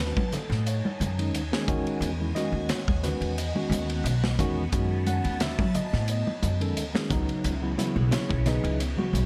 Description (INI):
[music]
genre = electric jazz fusion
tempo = 88 BPM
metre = 4/4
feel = swing 54% on 16ths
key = F# dorian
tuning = A4 = 438 Hz
[part]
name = tine electric piano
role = accompaniment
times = 0.0-9.3 s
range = C#3 to F#5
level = -33 LUFS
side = equal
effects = none
[part]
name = phased string machine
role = sustained chords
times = 0.0-9.3 s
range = C#3 to A5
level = -41 LUFS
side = equal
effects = ensemble chorus, phaser
[part]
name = upright bass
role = bass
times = 0.0-9.3 s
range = B1 to F#3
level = -30 LUFS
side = equal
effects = none
[part]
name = modern studio drum kit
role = drums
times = 0.2-9.3 s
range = hi-hat, kick drum, ride cymbal, snare drum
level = -34 LUFS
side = equal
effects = none
[part]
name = congas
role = percussion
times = 0.2-9.3 s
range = none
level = -35 LUFS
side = equal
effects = none
[sound]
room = light reverb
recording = none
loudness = -27 LUFS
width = mono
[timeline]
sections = 0.0-9.3 A section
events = none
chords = 0.0 F#m69; 1.7 Emaj9; 4.7 F#m69; 7.1 C#m9